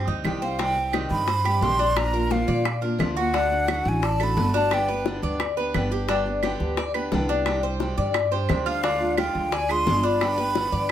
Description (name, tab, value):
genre	latin, Cuban son and guajira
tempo	175 BPM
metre	4/4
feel	straight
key	C harmonic minor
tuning	A4 = 440 Hz
part	Cuban tres	arpeggios	0.0-10.9 s	C4 to D5	-27 LUFS	left 1 dB	none
part	upright bass	bass	0.0-10.9 s	G1 to Bb2	-27 LUFS	right 1 dB	none
part	picked steel-string acoustic guitar	accompaniment	0.1-10.9 s	C3 to G4	-29 LUFS	left 1 dB	none
part	bongos	percussion	0.1-10.9 s	none	-30 LUFS	left 5 dB	none
part	claves	percussion	0.2-10.9 s	none	-32 LUFS	right 9 dB	none
part	breathy hollow jazz flute	melody	0.4-5.1, 8.7-10.9 s	F5 to C6	-25 LUFS	right 2 dB	none
room	moderate studio reverb, RT60 0.6 s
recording	none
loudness	-21 LUFS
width	side -10 dB against mid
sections	0.6-10.9 A section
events	none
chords	0.0 Cm; 2.0 Bb; 3.3 D; 4.7 G; 7.5 Cmadd9; 8.8 Ddim; 10.2 G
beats	0.24 | 0.59 0.93 1.28 1.62 | 1.96 2.31 2.65 2.99 | 3.34 3.68 4.03 4.37 | 4.71 5.06 5.40 5.74 | 6.09 6.43 6.78 7.12 | 7.46 7.80 8.15 8.49 | 8.84 9.18 9.52 9.87 | 10.21 10.55 10.89